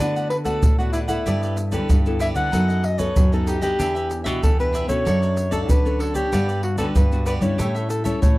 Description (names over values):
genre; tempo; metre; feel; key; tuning
samba and choro; 95 BPM; 4/4; straight; D major; A4 = 441 Hz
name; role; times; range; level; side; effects
breathy soprano saxophone; melody; 0.0-8.4 s; E4 to F#5; -25 LUFS; equal; none
cavaquinho; accompaniment; 0.0-8.4 s; D4 to F#5; -31 LUFS; right 2 dB; none
nylon-string guitar; accompaniment; 0.0-8.4 s; A2 to A4; -29 LUFS; left 3 dB; none
nylon-string guitar; bass; 0.0-8.4 s; E2 to D3; -24 LUFS; equal; none
tube shaker, surdo and pandeiro; percussion; 0.0-8.4 s; none; -21 LUFS; equal; none
room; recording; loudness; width
light reverb; dry, close 1970s-style studio recording; -18 LUFS; side -19 dB against mid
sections
0.0-8.4 A section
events
none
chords
0.0 D6; 1.3 G69; 2.5 B7/F#; 3.8 Em7; 5.1 Dmaj7/F#; 6.3 Gmaj7; 7.6 A7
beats
| 0.00 0.63 1.26 1.90 | 2.53 3.16 3.80 4.43 | 5.06 5.69 6.33 6.96 | 7.59 8.22